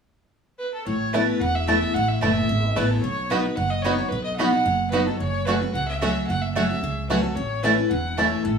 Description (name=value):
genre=bluegrass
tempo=222 BPM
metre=4/4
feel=straight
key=A lydian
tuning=A4 = 440 Hz
part: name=clear fiddle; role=melody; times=0.6-8.6 s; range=A4 to F#5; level=-26 LUFS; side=right 2 dB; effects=none
part: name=picked steel-string acoustic guitar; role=accompaniment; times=0.9-8.6 s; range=E2 to F#4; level=-25 LUFS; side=left 3 dB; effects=none
part: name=upright bass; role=bass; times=0.9-8.6 s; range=E1 to C#2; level=-27 LUFS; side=right 2 dB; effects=none
part: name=bluegrass banjo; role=melody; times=1.1-8.2 s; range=A3 to F#4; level=-28 LUFS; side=right 3 dB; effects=none
part: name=mandolin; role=stabs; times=1.1-8.3 s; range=A3 to B5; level=-25 LUFS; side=right 5 dB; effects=none
room=wet small room reverb, RT60 0.5 s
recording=studio ambience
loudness=-20 LUFS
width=side -6 dB against mid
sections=0.9-8.6 A section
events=none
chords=0.0 N.C.; 0.9 Asus2; 3.0 B; 5.2 F#m; 7.4 A